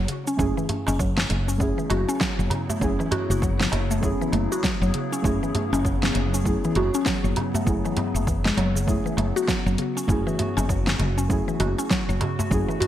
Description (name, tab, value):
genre	organic downtempo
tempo	99 BPM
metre	4/4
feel	swing 60% on 16ths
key	F# minor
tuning	A4 = 439 Hz
part	deep mellow chord stab	accompaniment	0.0-12.9 s	A3 to G#4	-30 LUFS	right 2 dB	chorus, sidechain pumping, digital delay
part	warbly tape-like pad	sustained chords	0.9-12.9 s	C#3 to G#4	-32 LUFS	left 3 dB	chorus, built-in reverb, phaser, sidechain pumping
part	mallet-like synth pluck	arpeggios	0.0-12.9 s	C#3 to F#4	-27 LUFS	equal	chorus, phaser, digital delay
part	woody fretless electric bass	bass	0.0-12.6 s	F#1	-25 LUFS	equal	none
part	deep house drum kit	drums	0.1-12.9 s	hi-hat, shaker, snare drum	-28 LUFS	equal	overdrive, gated reverb
part	electronic kick drum	drums	0.4-12.7 s	none	-28 LUFS	equal	overdrive
part	darbuka	percussion	0.4-12.9 s	none	-31 LUFS	right 2 dB	none
room	light reverb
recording	bright 1980s-style digital production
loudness	-21 LUFS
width	side -12 dB against mid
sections	0.0-12.9 A section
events	none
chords	0.0 F#m7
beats	0.39 1.00 | 1.60 2.21 2.82 3.42 | 4.03 4.63 5.24 5.85 | 6.45 7.06 7.67 8.27 | 8.88 9.48 10.09 10.70 | 11.30 11.91 12.51